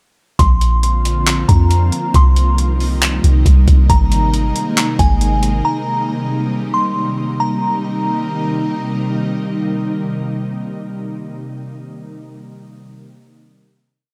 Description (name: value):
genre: hip hop, atmospheric cloud-rap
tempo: 137 BPM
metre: 4/4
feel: half-time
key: Eb major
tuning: A4 = 439 Hz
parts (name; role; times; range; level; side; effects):
- glassy synth bell; melody; 0.4-8.7 s; Ab5 to C6; -23 LUFS; equal; chorus, low-pass filter, digital delay
- ethereal airy pad; sustained chords; 0.8-11.6 s; C3 to F4; -23 LUFS; equal; ensemble chorus, built-in reverb, sidechain pumping
- soft 808-style bass; bass; 0.4-5.6 s; Ab1 to F2; -16 LUFS; equal; none
- jungle sampler-style drum kit; drums; 0.4-5.5 s; handclaps, hi-hat, kick drum; -17 LUFS; equal; overdrive
room: light reverb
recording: none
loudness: -16 LUFS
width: mono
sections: 0.4-7.4 verse; 7.4-10.9 final chord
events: none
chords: 0.4 Bbadd9; 2.1 Cm7; 3.9 Abadd9; 5.6 Eb6